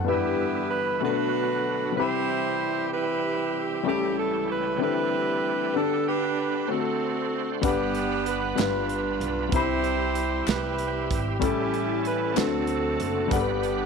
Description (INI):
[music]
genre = slow gospel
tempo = 63 BPM (dotted quarters)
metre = 6/8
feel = straight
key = G major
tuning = A4 = 440 Hz
[part]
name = warm upright piano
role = accompaniment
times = 0.0-13.9 s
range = G2 to B5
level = -28 LUFS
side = left 11 dB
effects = none
[part]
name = upright bass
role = bass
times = 0.0, 7.6-13.9 s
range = F#1 to D2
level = -33 LUFS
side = right 1 dB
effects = none
[part]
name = clear saxophone section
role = melody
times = 0.1-13.9 s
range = B3 to C5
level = -27 LUFS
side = right 3 dB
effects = none
[part]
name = bright tonewheel organ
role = sustained chords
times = 0.1-13.9 s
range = C#2 to F#5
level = -33 LUFS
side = right 11 dB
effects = slow rotary speaker, overdrive, chorus vibrato
[part]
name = modern studio drum kit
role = drums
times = 7.6-13.8 s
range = hi-hat, kick drum, snare drum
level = -30 LUFS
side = right 4 dB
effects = none
[part]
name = group handclap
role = percussion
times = 8.6-12.7 s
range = none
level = -37 LUFS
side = left 14 dB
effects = none
[sound]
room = moderate echo chamber reverb, RT60 2.4 s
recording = 1960s-style stereo with parts hard left and right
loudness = -23 LUFS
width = side -5 dB against mid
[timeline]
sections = 0.1-13.9 A section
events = none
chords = 0.1 G6; 1.0 Bm7; 2.0 Cmaj7; 3.9 A7/C#; 4.8 D9sus4; 5.7 G/D; 6.7 D7; 7.6 Gmaj7; 8.6 G7; 9.5 Cmaj7; 11.4 A7; 12.4 D7; 13.3 Gmaj7